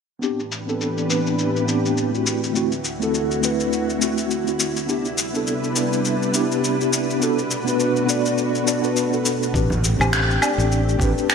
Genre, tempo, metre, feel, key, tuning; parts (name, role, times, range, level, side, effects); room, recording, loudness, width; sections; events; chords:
sunset chillout; 103 BPM; 4/4; swing 57% on 16ths; A dorian; A4 = 440 Hz
mellow tine electric piano; accompaniment; 0.2-11.3 s; A3 to D5; -22 LUFS; left 1 dB; medium stereo tremolo, auto-pan, low-pass filter, digital delay
soft string machine; sustained chords; 0.4-11.3 s; D2 to B4; -25 LUFS; right 1 dB; ensemble chorus
electronic shaker, woodblock and finger snaps; drums; 0.2-11.3 s; -25 LUFS; left 2 dB; overdrive, low-pass filter on perc, low-pass filter on snare, low-pass filter on room, gated reverb
fretless electric bass; bass; 9.5-11.1 s; A1; -20 LUFS; equal
electronic kick drum; drums; 9.5-11.1 s; -24 LUFS; equal; overdrive
congas; percussion; 9.7-11.1 s; -30 LUFS; left 1 dB
moderate lush hall reverb, RT60 2.0 s; bright 1980s-style digital production; -18 LUFS; side -6 dB against mid
0.2-9.5 A section; 9.5-11.3 B section
filter sweep on tine electric piano 0.2-9.5
0.2 Am11; 2.3 D7; 4.9 Cmaj9; 7.2 Bm7; 9.5 Am11